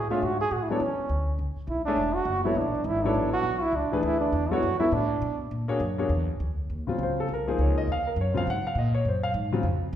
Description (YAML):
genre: modal jazz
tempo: 204 BPM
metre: 4/4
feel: swing 61% on 8ths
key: Eb dorian from 6.7 s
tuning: A4 = 441 Hz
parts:
  - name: clear trombone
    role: second line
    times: 0.0-5.4 s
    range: C#4 to G#4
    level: -26 LUFS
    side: right 3 dB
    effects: none
  - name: upright bass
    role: bass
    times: 0.0-10.0 s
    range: E1 to B2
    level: -29 LUFS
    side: equal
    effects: none
  - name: dark grand piano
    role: accompaniment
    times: 0.1-9.6 s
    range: Db3 to Gb5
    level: -28 LUFS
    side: left 2 dB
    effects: none
room: wet recital hall reverb, RT60 1.4 s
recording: recorded in a church or concert hall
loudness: -24 LUFS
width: side -10 dB against mid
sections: 0.0-6.7 A section; 6.7-10.0 A section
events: trombone solo 0.0-6.7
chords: 0.0 E13sus4; 5.5 A#7alt; 6.7 Ebm11